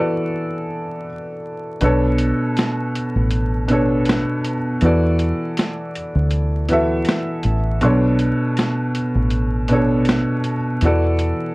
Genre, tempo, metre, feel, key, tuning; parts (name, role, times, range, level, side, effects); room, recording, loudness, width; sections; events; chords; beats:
lo-fi hip hop; 80 BPM; 4/4; swing 55% on 16ths; B minor; A4 = 441 Hz
felt-muted upright piano; accompaniment; 0.0-11.5 s; B2 to E5; -19 LUFS; equal
deep dub fingered electric bass; bass; 1.8-11.3 s; A1 to E2; -19 LUFS; equal
boom bap sampler-style drum kit; drums; 1.8-11.4 s; hi-hat, snare drum; -22 LUFS; equal
moderate small room reverb, RT60 0.5 s; worn, warbling old tape, cassette tape, vinyl crackle, warbly pitch drift; -16 LUFS; side -23 dB against mid
0.0-1.8 A section; 1.8-11.5 B section
break 0.0-1.8; filter sweep on felt piano 0.0-1.8; kick muted 1.8-11.5
0.0 E9sus4; 1.8 Bm7; 4.8 E9sus4; 7.8 Bm7; 10.8 E9sus4
0.32 1.07 | 1.82 2.57 3.32 4.07 | 4.82 5.57 6.32 7.07 | 7.82 8.57 9.32 10.07 | 10.82